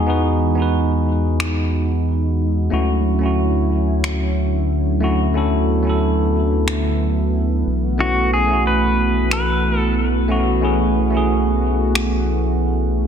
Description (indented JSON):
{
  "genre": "sunset chillout",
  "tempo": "91 BPM",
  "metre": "4/4",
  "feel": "straight",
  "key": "unclear",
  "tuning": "A4 = 440 Hz",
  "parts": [
    { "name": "tine electric piano", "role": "accompaniment", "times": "0.0-13.1 s", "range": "A3 to B4", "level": "-21 LUFS", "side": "moving between left 2 dB and right 6 dB", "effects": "auto-pan, tape echo" },
    { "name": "lush unison pad", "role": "sustained chords", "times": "0.0-13.1 s", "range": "D3 to F#4", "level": "-22 LUFS", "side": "right 1 dB", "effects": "chorus" },
    { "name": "round analog bass", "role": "bass", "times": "0.0-13.1 s", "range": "B1 to E2", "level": "-20 LUFS", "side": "equal", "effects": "tube saturation" },
    { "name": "electronic finger snaps", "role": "drums", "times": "1.4-12.1 s", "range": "none", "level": "-25 LUFS", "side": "left 1 dB", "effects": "overdrive, soft clipping on snare" },
    { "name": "pedal steel guitar", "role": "melody", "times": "8.0-9.9 s", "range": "F#4 to B4", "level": "-21 LUFS", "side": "left 1 dB", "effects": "ping-pong delay" }
  ],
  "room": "moderate plate reverb, RT60 1.6 s",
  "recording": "dense, heavily limited modern master",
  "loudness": "-16 LUFS",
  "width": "side -8 dB against mid",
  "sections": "0.0-13.1 A section",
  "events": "filter sweep on analog synth pad 0.0-13.1",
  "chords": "0.0 Emaj9; 2.7 Dmaj9; 7.7 B7sus4",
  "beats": "| 0.08 0.74 1.40 2.06 | 2.72 3.38 4.04 4.70 | 5.36 6.02 6.68 7.33 | 8.00 8.65 9.31 9.97 | 10.63 11.29 11.95 12.61"
}